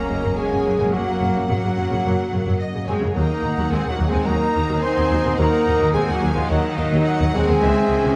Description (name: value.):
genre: cinematic.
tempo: 108 BPM.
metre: 4/4.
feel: straight.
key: unclear.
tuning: A4 = 440 Hz.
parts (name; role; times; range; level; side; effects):
rich symphonic violin section; melody; 0.0-8.2 s; Eb5 to C6; -36 LUFS; equal; none.
mellow hollow concert flute; second line; 0.0-8.2 s; Eb5 to C6; -34 LUFS; equal; none.
warm symphonic violin section; second line; 0.0-8.2 s; Db5 to Bb5; -34 LUFS; equal; none.
rich symphonic viola section; accompaniment; 0.0-8.2 s; Db3 to Eb4; -31 LUFS; equal; none.
warm French horn section; sustained chords; 0.0-8.2 s; Eb4 to C5; -26 LUFS; equal; none.
concert harp; arpeggios; 0.0-8.2 s; Gb2 to Bb5; -34 LUFS; equal; none.
dark trumpet section; stabs; 0.0-8.2 s; Gb3 to Eb4; -30 LUFS; equal; none.
bright symphonic cello section; bass; 0.0-8.2 s; Eb3 to C4; -29 LUFS; equal; none.
clear symphonic double bass section; bass; 0.1-8.1 s; Db2 to Gb2; -25 LUFS; equal; none.
bright trombone section; sustained chords; 0.9-7.8 s; Eb3 to Bb3; -32 LUFS; equal; none.
room: moderate scoring stage reverb, RT60 1.9 s.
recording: dark, warm production.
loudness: -20 LUFS.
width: mono.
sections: 0.0-8.2 A section.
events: none.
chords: 0.0 Gb; 3.2 Ebm; 7.6 Dbmadd9.